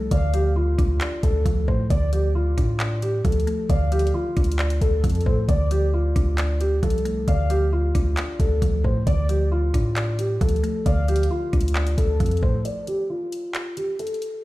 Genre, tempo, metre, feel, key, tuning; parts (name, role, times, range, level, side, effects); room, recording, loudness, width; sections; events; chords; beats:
hip hop, trap; 134 BPM; 4/4; half-time; D minor; A4 = 439 Hz
felt-muted upright piano; melody; 0.0-14.4 s; F4 to D5; -26 LUFS; equal; low-pass filter, tape echo
mallet-like synth pluck; accompaniment; 0.0-12.7 s; D3 to D5; -30 LUFS; right 2 dB; chorus
long sustained 808-style bass; bass; 0.0-12.6 s; C2 to A2; -22 LUFS; equal
warm velvety synth lead; second line; 0.1-12.6 s; A4 to F5; -35 LUFS; left 2 dB; chorus, tape echo
trap drum kit; drums; 0.1-14.3 s; handclaps, hi-hat, kick drum; -23 LUFS; equal
little or no reverb; played on a big sound system in a bare room, stone room reverb; -20 LUFS; side -17 dB against mid
0.0-12.7 A section; 12.7-14.4 B section
break 12.7-14.4
0.0 Dm; 12.7 N.C.
| 0.11 0.56 1.01 1.46 | 1.90 2.35 2.80 3.25 | 3.69 4.14 4.59 5.04 | 5.49 5.93 6.38 6.83 | 7.28 7.72 8.17 8.62 | 9.07 9.52 9.96 10.41 | 10.86 11.31 11.75 12.20 | 12.65 13.10 13.54 13.99